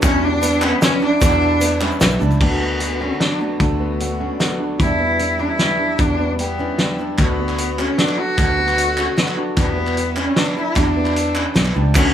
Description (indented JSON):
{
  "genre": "indie folk with a building arrangement",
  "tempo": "151 BPM",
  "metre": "3/4",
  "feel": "straight",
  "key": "unclear",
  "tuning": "A4 = 442 Hz",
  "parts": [
    { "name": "warm cello", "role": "melody", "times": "0.0-12.1 s", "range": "A3 to F#4", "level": "-20 LUFS", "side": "left 1 dB", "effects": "none" },
    { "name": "dark upright piano", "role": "accompaniment", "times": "0.0-2.4, 12.0-12.1 s", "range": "D2 to B4", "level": "-30 LUFS", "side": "right 1 dB", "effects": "none" },
    { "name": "picked acoustic archtop guitar", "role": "accompaniment", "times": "0.0-12.1 s", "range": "E2 to F#4", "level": "-27 LUFS", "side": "left 6 dB", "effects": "none" },
    { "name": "warm upright piano", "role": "arpeggios", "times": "0.0-12.1 s", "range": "B3 to D4", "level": "-25 LUFS", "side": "right 7 dB", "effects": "none" },
    { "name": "fingered electric bass", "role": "bass", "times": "0.0-12.1 s", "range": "B1 to E2", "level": "-21 LUFS", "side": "equal", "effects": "none" },
    { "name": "loose indie drum kit", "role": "drums", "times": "0.0-12.0 s", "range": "crash cymbal, hi-hat, kick drum, snare drum", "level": "-20 LUFS", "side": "equal", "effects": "none" },
    { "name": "egg shaker", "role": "percussion", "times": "0.0-2.4, 12.0 s", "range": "none", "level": "-33 LUFS", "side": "right 7 dB", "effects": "none" },
    { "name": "group handclap", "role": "percussion", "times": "0.0-2.4, 7.2-12.0 s", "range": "none", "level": "-27 LUFS", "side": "right 1 dB", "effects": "none" },
    { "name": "fingerpicked steel-string acoustic guitar", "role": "accompaniment", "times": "2.4-7.2 s", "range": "D2 to G4", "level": "-27 LUFS", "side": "left 2 dB", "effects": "none" }
  ],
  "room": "small room ambience",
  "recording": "none",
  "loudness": "-15 LUFS",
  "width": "side -9 dB against mid",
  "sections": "0.0-2.4 A section; 2.4-12.0 B section",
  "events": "none",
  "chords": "0.0 Em7; 2.4 D6; 4.8 Em7; 7.2 D6; 9.6 Em7"
}